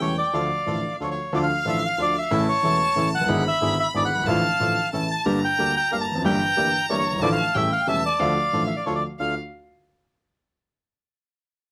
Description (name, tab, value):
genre	tango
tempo	183 BPM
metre	3/4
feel	rubato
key	D harmonic minor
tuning	A4 = 440 Hz
part	bandoneon	melody	0.0-9.3 s	C#5 to A5	-25 LUFS	equal	none
part	rich violin	second line	0.0-9.3 s	F5 to B5	-32 LUFS	equal	none
part	warm grand piano	accompaniment	0.0-9.3 s	E1 to G4	-27 LUFS	equal	none
part	bandoneon	stabs	0.0-9.3 s	G3 to Bb4	-35 LUFS	equal	none
room	light reverb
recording	close, detailed microphones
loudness	-23 LUFS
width	mono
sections	0.0-1.3 A section; 1.3-9.2 A section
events	none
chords	0.3 Dm; 2.3 A; 3.3 E7/G#; 4.3 Dm/A; 4.9 A; 5.3 Gm; 6.2 Edim/G; 7.2 Dm/A; 7.5 A7; 8.2 Dm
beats	0.00 | 0.33 0.66 1.00 | 1.33 1.66 1.99 | 2.32 2.64 2.97 | 3.29 3.62 3.94 | 4.27 4.60 4.93 | 5.26 5.59 5.91 | 6.24 6.57 6.89 | 7.21 7.54 7.87 | 8.20 8.52 8.86 | 9.19